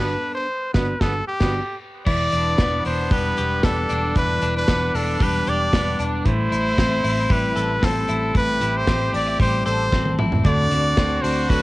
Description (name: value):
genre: jangly indie pop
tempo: 114 BPM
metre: 4/4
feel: straight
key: unclear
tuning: A4 = 440 Hz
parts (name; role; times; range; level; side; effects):
- brilliant trumpet; melody; 0.0-11.6 s; G4 to D5; -23 LUFS; equal; cassette tape
- breathy trumpet; second line; 0.0-11.6 s; B3 to G4; -32 LUFS; right 3 dB; analog delay
- picked steel-string acoustic guitar; accompaniment; 0.0-1.6, 10.4-11.6 s; D3 to F#4; -27 LUFS; right 2 dB; none
- twelve-string electric guitar; arpeggios; 0.0-11.6 s; A2 to B4; -25 LUFS; left 2 dB; none
- vintage muted fingered electric bass; bass; 0.0-11.6 s; E1 to D2; -25 LUFS; equal; none
- modern studio drum kit; drums; 0.7-11.6 s; crash cymbal, hi-hat, kick drum, snare drum, toms; -22 LUFS; equal; none
room: light reverb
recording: home recording on cassette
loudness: -18 LUFS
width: side -19 dB against mid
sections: 0.0-2.1 A section; 2.1-11.6 A section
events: band accent 0.0-2.1; drum fill 9.9-10.5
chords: 0.0 Gmaj7; 2.1 Em7; 6.3 Am7; 10.5 D7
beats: 0.48 1.01 1.54 | 2.06 2.59 3.11 3.63 | 4.16 4.68 5.21 5.73 | 6.26 6.78 7.30 7.83 | 8.35 8.88 9.40 9.93 | 10.45 10.98 11.50